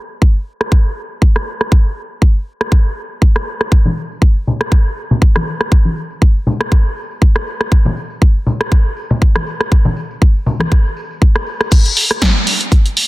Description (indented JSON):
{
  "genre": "house",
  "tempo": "120 BPM",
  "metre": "4/4",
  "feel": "swing 55% on 16ths",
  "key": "none",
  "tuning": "none",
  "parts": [
    { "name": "electronic kick drum", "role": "drums", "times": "0.2-12.8 s", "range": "none", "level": "-10 LUFS", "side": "equal", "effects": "none" },
    { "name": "punchy analog drum machine", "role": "drums", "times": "0.6-13.1 s", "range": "crash cymbal, hi-hat, rim click, snare drum", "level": "-18 LUFS", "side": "equal", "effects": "soft clipping on snare, low-pass filter on snare, low-pass filter on hats, low-pass filter on cymbals" },
    { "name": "tambourine and congas", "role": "percussion", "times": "3.7-11.7 s", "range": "none", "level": "-17 LUFS", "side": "left 1 dB", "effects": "sidechain pumping on perc, low-pass filter on perc" }
  ],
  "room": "little or no reverb",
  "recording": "dense, heavily limited modern master",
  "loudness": "-12 LUFS",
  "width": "side -19 dB against mid",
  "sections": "0.0-11.7 A section; 11.7-13.1 B section",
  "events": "drop 11.7-13.1",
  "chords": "none",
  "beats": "0.22 0.72 1.22 | 1.72 2.22 2.72 3.22 | 3.72 4.22 4.72 5.22 | 5.72 6.22 6.72 7.22 | 7.72 8.22 8.72 9.22 | 9.72 10.22 10.72 11.22 | 11.72 12.22 12.72"
}